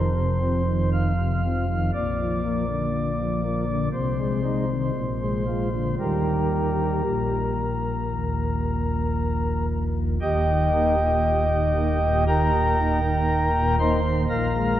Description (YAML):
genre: classical, chorale-style piece for pipe organ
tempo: 58 BPM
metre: 4/4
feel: rubato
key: Eb major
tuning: A4 = 440 Hz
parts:
  - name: pipe organ, flutes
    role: solo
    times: 0.0-14.8 s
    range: Eb1 to C6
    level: -21 LUFS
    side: equal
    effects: none
room: wet church reverb, RT60 3.6 s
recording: worn, warbling old tape, cassette tape, warbly pitch drift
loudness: -21 LUFS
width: side -12 dB against mid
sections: 0.0-10.2 A section; 10.2-14.8 A section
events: none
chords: 0.0 F7(no3); 1.9 Bb; 3.9 Ab/C; 4.9 Bb7; 6.0 Eb; 14.3 Bb7(no3)